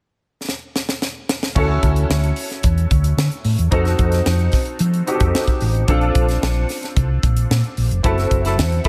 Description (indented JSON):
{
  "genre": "polished 1980s jazz-funk pop",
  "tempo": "111 BPM",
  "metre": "4/4",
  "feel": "straight",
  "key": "unclear",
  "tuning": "A4 = 440 Hz",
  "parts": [
    { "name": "tight funk drum kit", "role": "drums", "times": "0.5-8.9 s", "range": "crash cymbal, hi-hat, kick drum, snare drum", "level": "-23 LUFS", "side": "equal", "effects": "none" },
    { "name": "clear grand piano", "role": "accompaniment", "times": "1.6-8.9 s", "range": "C4 to A4", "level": "-25 LUFS", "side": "equal", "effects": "ensemble chorus" },
    { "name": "hollow-body short-scale fingered electric bass", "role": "bass", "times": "1.6-8.8 s", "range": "F1 to F3", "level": "-20 LUFS", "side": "equal", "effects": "none" },
    { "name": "mellow horn section", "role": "second line", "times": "8.0-8.9 s", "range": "F#3 to A4", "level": "-27 LUFS", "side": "equal", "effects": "tape echo" }
  ],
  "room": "studio reverb",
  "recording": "none",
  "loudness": "-18 LUFS",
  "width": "mono",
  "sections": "0.0-1.6 A section; 1.6-8.9 B section",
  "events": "drum fill 0.5-1.6; band accent 8.0-8.9",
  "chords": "0.0 N.C.; 1.6 Dmaj7; 3.7 F7b9; 5.9 Bbmaj9; 8.0 F#m7b5",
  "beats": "0.48 1.02 | 1.56 2.10 2.64 3.18 | 3.72 4.26 4.80 5.34 | 5.88 6.42 6.96 7.50 | 8.04 8.58"
}